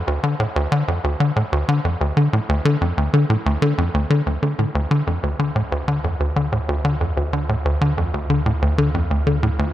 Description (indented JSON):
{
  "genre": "ambient, sequencer-driven space music",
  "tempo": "93 BPM",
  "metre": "4/4",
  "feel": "straight",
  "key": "D minor",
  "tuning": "A4 = 441 Hz",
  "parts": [
    { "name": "tight sequencer bass", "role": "riff", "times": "0.0-9.7 s", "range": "D2 to D3", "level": "-18 LUFS", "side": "equal", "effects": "tape echo" },
    { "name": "warm sub bass", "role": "bass", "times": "4.3-9.7 s", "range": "D2", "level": "-25 LUFS", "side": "right 1 dB", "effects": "none" },
    { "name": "wind-like tuned noise texture", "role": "texture", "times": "5.2-9.7 s", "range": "F3 to F4", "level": "-38 LUFS", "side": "right 2 dB", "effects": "none" }
  ],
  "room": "moderate spring reverb, RT60 2.4 s",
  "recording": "echo-heavy mix",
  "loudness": "-18 LUFS",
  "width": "side -13 dB against mid",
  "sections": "0.0-4.3 A section; 4.3-9.7 B section",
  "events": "none",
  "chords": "0.0 N.C.; 4.3 Dm"
}